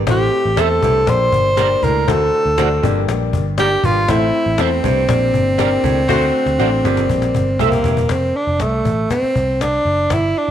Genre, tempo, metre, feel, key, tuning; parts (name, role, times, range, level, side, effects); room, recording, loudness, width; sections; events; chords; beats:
uptempo 1960s-style soul; 120 BPM; 4/4; straight; F major; A4 = 440 Hz
warm upright piano; accompaniment; 0.0-8.1 s; G2 to E5; -22 LUFS; left 11 dB
warm baritone saxophone; riff; 0.0-8.0 s; D2 to A2; -26 LUFS; right 12 dB
vintage muted picked electric bass; bass; 0.0-10.5 s; E1 to E2; -20 LUFS; equal
breathy tenor saxophone; melody; 0.1-10.5 s; A3 to C5; -16 LUFS; right 1 dB
cajon; drums; 0.1-10.4 s; -23 LUFS; left 3 dB
electric guitar at the edge of break-up; stabs; 0.6-7.7 s; F#4 to E5; -24 LUFS; right 11 dB; analog chorus
warm horn section; second line; 6.1-6.2 s; A3 to C5; -23 LUFS; equal; tape echo
moderate echo chamber reverb, RT60 1.5 s, small room reverb; 1960s-style stereo with parts hard left and right; -14 LUFS; side -10 dB against mid
0.0-8.1 A section; 8.1-10.5 B section
drum fill 6.1-8.1; band accent 6.1-8.1
0.1 Am; 1.1 Gm; 2.1 D7; 2.8 Gm; 4.1 Am; 5.1 Gm; 6.1 D7; 6.8 Gm; 7.6 C; 8.1 F
| 0.08 0.58 1.08 1.58 | 2.08 2.58 3.08 3.58 | 4.08 4.58 5.09 5.59 | 6.09 6.59 7.09 7.59 | 8.10 8.60 9.10 9.61 | 10.11